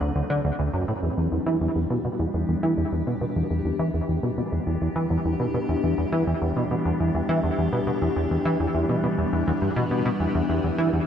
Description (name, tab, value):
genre	ambient, sequencer-driven space music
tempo	103 BPM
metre	4/4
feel	straight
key	E minor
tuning	A4 = 440 Hz
part	evolving wavetable pad	sustained chords	0.0-11.1 s	E3 to B4	-28 LUFS	left 2 dB	phaser, built-in reverb
part	plucky analog bass	riff	0.0-11.0 s	D2 to E3	-23 LUFS	equal	lush chorus, tape echo
room	wet scoring stage reverb, RT60 1.8 s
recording	none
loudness	-22 LUFS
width	side -8 dB against mid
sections	0.0-11.1 A section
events	fade-in on ambient pad 0.0-11.1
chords	0.0 D7; 1.0 Em7